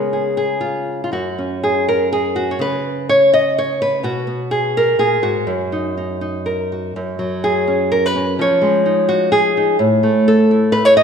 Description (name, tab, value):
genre	folk, solo fingerstyle acoustic guitar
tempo	125 BPM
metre	3/4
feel	rubato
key	unclear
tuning	A4 = 439 Hz
part	nylon-string guitar	solo	0.0-11.0 s	F#2 to D#5	-14 LUFS	equal	none
room	wet scoring stage reverb, RT60 1.5 s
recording	recorded in a church or concert hall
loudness	-14 LUFS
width	side -7 dB against mid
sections	0.0-7.0 A section; 7.0-11.0 B section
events	none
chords	0.0 C#5; 1.1 F#5; 2.6 N.C.; 4.0 B5; 5.5 F#6; 7.0 F#sus2; 8.4 C#add9/E#; 9.8 A5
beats	0.11 0.60 | 1.11 1.61 2.10 | 2.59 3.07 3.56 | 4.03 4.51 4.99 | 5.47 5.96 6.46 | 6.95 7.43 7.91 | 8.38 8.85 9.31 | 9.79 10.25 10.72